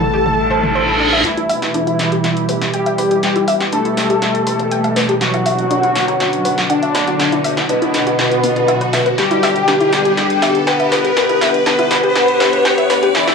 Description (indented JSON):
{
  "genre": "melodic techno",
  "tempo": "121 BPM",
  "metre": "4/4",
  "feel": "straight",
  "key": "E minor",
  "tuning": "A4 = 440 Hz",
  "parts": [
    { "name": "analog synth brass", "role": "melody", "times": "0.0-13.3 s", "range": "B2 to B4", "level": "-16 LUFS", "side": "left 1 dB", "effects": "chorus, cassette tape, tape echo" },
    { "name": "soft supersaw", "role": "second line", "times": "0.0-1.2 s", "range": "A5", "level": "-22 LUFS", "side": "right 2 dB", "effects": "cassette tape, analog delay" },
    { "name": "evolving wavetable pad", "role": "sustained chords", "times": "0.0-13.3 s", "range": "B2 to G4", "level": "-21 LUFS", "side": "equal", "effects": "chorus, built-in reverb, cassette tape" },
    { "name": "dark detuned saw bass", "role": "bass", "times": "0.0-13.1 s", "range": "E1 to G2", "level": "-29 LUFS", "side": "equal", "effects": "none" },
    { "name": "punchy analog drum machine", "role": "drums", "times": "0.0-13.3 s", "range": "hi-hat, snare drum, toms", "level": "-20 LUFS", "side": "equal", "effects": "overdrive, high-pass filter on toms, cassette tape, high-pass filter on snare, high-pass filter on hats" },
    { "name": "analog pluck", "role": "arpeggios", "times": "0.1-13.3 s", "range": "B3 to G5", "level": "-21 LUFS", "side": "left 2 dB", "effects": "chorus, cassette tape, analog delay" },
    { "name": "reverse cymbal and riser", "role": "sound effects", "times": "0.4-13.3 s", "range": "none", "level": "-21 LUFS", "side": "equal", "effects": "none" }
  ],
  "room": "wet small room ambience, RT60 0.5 s",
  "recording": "home recording on cassette, high-pass filter, small room reverb",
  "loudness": "-12 LUFS",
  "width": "side -5 dB against mid",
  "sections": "0.0-1.2 A section; 1.2-13.3 B section",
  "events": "reverse cymbal 0.4-1.2; build-up 1.2-13.3; drum fill 1.2-13.3; riser 1.2-13.3; filter sweep on synth arpeggio sound 1.2-13.3",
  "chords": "0.0 Am7; 1.2 Em; 5.2 Bm/F#; 9.2 G"
}